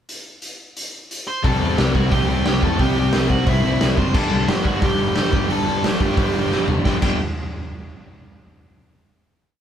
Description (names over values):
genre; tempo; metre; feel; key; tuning
punk rock; 177 BPM; 4/4; straight; unclear; A4 = 439 Hz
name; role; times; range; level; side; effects
raw garage drum kit; drums; 0.1-7.1 s; crash cymbal, hi-hat, kick drum, snare drum, toms; -21 LUFS; equal; none
smooth overdriven lead guitar; melody; 1.3-7.2 s; E4 to C6; -24 LUFS; right 2 dB; none
distorted electric guitar; riff; 1.4-7.2 s; G2 to C4; -28 LUFS; right 6 dB; distortion
fuzz guitar; riff; 1.4-7.2 s; G2 to C4; -28 LUFS; left 1 dB; distortion
overdriven semi-hollow guitar; riff; 1.4-7.2 s; G2 to C4; -24 LUFS; left 6 dB; none
fuzz picked electric bass; bass; 1.4-7.2 s; F#1 to E2; -24 LUFS; equal; overdrive
room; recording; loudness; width
moderate studio reverb, RT60 0.6 s; band playing live in one room; -16 LUFS; side -9 dB against mid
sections
0.1-1.4 pickup bar; 1.4-6.9 chorus; 6.9-8.2 final chord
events
drum fill 6.5-6.9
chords
0.1 N.C.; 1.4 C; 4.1 G5